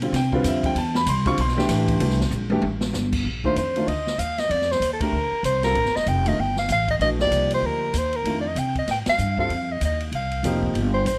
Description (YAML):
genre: modal jazz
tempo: 192 BPM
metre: 4/4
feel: swing 61% on 8ths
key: F mixolydian from 3.3 s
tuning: A4 = 440 Hz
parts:
  - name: warm grand piano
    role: accompaniment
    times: 0.0-10.8 s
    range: D3 to C#6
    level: -27 LUFS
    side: equal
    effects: none
  - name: upright bass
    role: bass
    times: 0.0-11.2 s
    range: Eb1 to C3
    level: -28 LUFS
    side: equal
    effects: none
  - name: open jazz drum kit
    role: drums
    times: 0.0-11.1 s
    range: crash cymbal, hi-hat, kick drum, ride cymbal, snare drum, toms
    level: -33 LUFS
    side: equal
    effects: none
  - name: warm soprano saxophone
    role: melody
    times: 3.5-11.2 s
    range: A4 to G5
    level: -26 LUFS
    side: equal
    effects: none
room: light reverb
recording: none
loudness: -23 LUFS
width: mono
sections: 0.0-3.3 A section; 3.3-11.2 B section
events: drum fill 2.3-2.9; band accent 5.0, 9.0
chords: 0.0 Am7; 2.0 C7; 3.3 F7sus4; 5.8 Eb6; 8.3 F7sus4